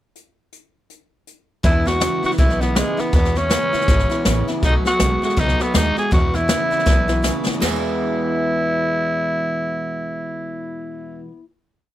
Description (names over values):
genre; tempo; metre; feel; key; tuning
rockabilly; 161 BPM; 4/4; swing 60% on 8ths; E major; A4 = 439 Hz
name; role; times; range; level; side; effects
jazz brush drum kit; drums; 0.2-7.7 s; crash cymbal, hi-hat, kick drum, snare drum; -20 LUFS; equal; none
picked steel-string acoustic guitar; accompaniment; 1.6-11.4 s; E2 to F#4; -28 LUFS; left 5 dB; none
electric guitar through a small old amp; riff; 1.6-11.3 s; E2 to G#4; -26 LUFS; right 4 dB; none
upright bass; bass; 1.6-11.3 s; G#1 to E2; -22 LUFS; equal; none
breathy tenor saxophone; melody; 1.7-11.2 s; G#3 to G#4; -21 LUFS; equal; none
room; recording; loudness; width
little or no reverb; none; -16 LUFS; side -13 dB against mid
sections
0.2-1.6 pickup bar; 1.6-7.6 A section; 7.6-10.6 final chord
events
drum fill 6.9-7.6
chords
0.2 N.C.; 1.6 E; 4.6 B7; 6.1 E